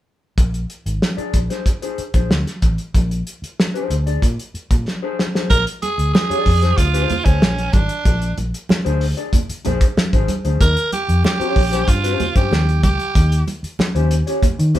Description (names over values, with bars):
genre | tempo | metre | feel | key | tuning
funk | 94 BPM | 4/4 | straight | Bb mixolydian | A4 = 440 Hz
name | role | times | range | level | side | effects
vintage muted fingered electric bass | bass | 0.4-14.7 s | Ab1 to Eb3 | -19 LUFS | equal | none
cloth-damped thuddy drum kit | drums | 0.4-14.8 s | hi-hat, kick drum, snare drum | -18 LUFS | equal | none
mellow electric guitar | accompaniment | 1.2-14.8 s | Db4 to D5 | -24 LUFS | left 4 dB | none
breathy tenor saxophone | melody | 5.5-13.4 s | Db4 to Bb4 | -21 LUFS | right 4 dB | none
congas | percussion | 5.8-14.8 s | none | -25 LUFS | right 3 dB | none
room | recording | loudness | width
light reverb | band playing live in one room | -16 LUFS | side -13 dB against mid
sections
0.4-5.5 A section; 5.5-14.8 B section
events
drum fill 4.9-5.5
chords
0.4 Bb9; 10.6 Eb13